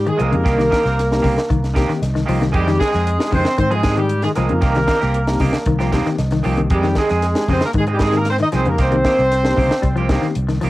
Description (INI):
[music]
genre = afrobeat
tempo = 115 BPM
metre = 4/4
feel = straight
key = unclear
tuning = A4 = 440 Hz
[part]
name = warm horn section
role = melody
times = 0.0-10.3 s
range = G4 to Eb5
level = -21 LUFS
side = equal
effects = none
[part]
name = brilliant trombone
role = second line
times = 0.0-10.3 s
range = G3 to Eb4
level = -23 LUFS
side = right 1 dB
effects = cassette tape
[part]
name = fingered electric bass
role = bass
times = 0.0-10.7 s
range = C2 to Ab2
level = -20 LUFS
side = equal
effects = none
[part]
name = semi-hollow electric guitar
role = arpeggios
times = 0.1-10.7 s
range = Db3 to G3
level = -23 LUFS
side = left 4 dB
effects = cassette tape
[part]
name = tight funk drum kit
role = drums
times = 0.1-10.7 s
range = hi-hat, kick drum, snare drum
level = -22 LUFS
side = equal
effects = none
[part]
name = electric guitar at the edge of break-up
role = stabs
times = 0.2-10.7 s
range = Eb3 to Ab4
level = -24 LUFS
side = right 4 dB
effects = cassette tape
[part]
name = reed electric piano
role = accompaniment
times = 0.3-10.3 s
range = Ab3 to G5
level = -25 LUFS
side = left 3 dB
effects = medium tremolo, cassette tape
[sound]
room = studio ambience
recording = home recording on cassette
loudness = -15 LUFS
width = side -17 dB against mid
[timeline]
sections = 0.0-10.7 A section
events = reed electric piano fill 1.5-2.5, 5.9-6.7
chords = 0.5 Cm7; 2.5 Fm7; 4.6 Cm7; 6.7 Fm7; 8.8 Cm7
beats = | 0.46 0.98 1.50 2.02 | 2.54 3.06 3.59 4.11 | 4.63 5.15 5.67 6.19 | 6.71 7.23 7.75 8.27 | 8.79 9.31 9.83 10.36